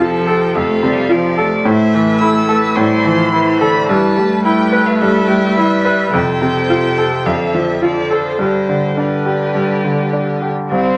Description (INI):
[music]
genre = quick classical-period movement for piano quartet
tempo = 107 BPM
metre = 4/4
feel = straight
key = unclear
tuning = A4 = 436 Hz
[part]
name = rich violin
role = melody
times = 0.0-11.0 s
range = E4 to E6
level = -24 LUFS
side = equal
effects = none
[part]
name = rich cello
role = second line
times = 0.0-11.0 s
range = C3 to C4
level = -21 LUFS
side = equal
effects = none
[part]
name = rich violin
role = second line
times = 0.0-11.0 s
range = C4 to D5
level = -25 LUFS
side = equal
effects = none
[part]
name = bright concert grand piano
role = accompaniment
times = 0.0-11.0 s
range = C2 to B4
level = -17 LUFS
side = equal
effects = none
[sound]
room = wet large studio reverb, RT60 0.8 s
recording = none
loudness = -14 LUFS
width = mono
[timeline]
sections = 0.0-10.7 A section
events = none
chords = 0.0 F; 1.7 Am; 3.9 Em/G; 6.1 F; 7.3 Dm/F; 8.4 G